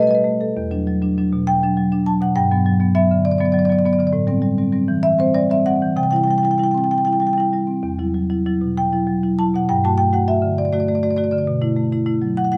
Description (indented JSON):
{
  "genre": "classical, contemporary piece for solo marimba",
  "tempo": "66 BPM (dotted quarters)",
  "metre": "6/8",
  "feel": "rubato",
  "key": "E minor",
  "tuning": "A4 = 440 Hz",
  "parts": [
    { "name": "marimba with medium mallets", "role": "solo", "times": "0.0-12.6 s", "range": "E2 to A5", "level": "-18 LUFS", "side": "equal", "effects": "none" }
  ],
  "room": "light reverb",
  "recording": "dark, warm production",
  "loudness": "-18 LUFS",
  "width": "mono",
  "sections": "0.6-12.6 A section",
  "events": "none",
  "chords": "0.0 Baug7; 0.6 Em9 (rootless); 2.3 Gmaj7; 4.1 Am7 (rootless); 6.0 C; 7.8 Emadd9; 9.7 Gsus2; 11.5 B7sus4"
}